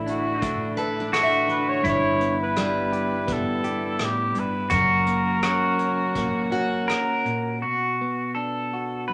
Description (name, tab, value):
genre	acoustic folk-pop ballad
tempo	84 BPM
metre	4/4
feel	straight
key	B minor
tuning	A4 = 439 Hz
part	pedal steel guitar	second line	0.0-9.1 s	E4 to B4	-28 LUFS	equal	none
part	direct-recorded clean electric guitar	accompaniment	0.0-9.1 s	F#2 to A4	-30 LUFS	equal	none
part	muted chamber string section	sustained chords	0.0-7.6 s	C#3 to F#4	-38 LUFS	equal	none
part	vintage muted fingered electric bass	bass	0.0-7.6 s	F#1 to A1	-36 LUFS	equal	none
part	mellow cor anglais	melody	0.1-6.9 s	F#4 to C#5	-30 LUFS	equal	none
part	soft brush drum kit	drums	0.1-7.4 s	hi-hat, kick drum, rim click	-35 LUFS	equal	none
part	picked plugged-in steel-string acoustic guitar	arpeggios	0.8-7.9 s	G3 to E5	-32 LUFS	equal	none
room	wet studio reverb, RT60 0.6 s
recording	none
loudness	-24 LUFS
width	mono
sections	0.0-7.6 A section; 7.6-9.1 B section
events	pedal steel guitar solo 7.6-9.1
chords	0.0 Asus4; 1.9 Em7/G; 4.7 F#; 7.6 Bm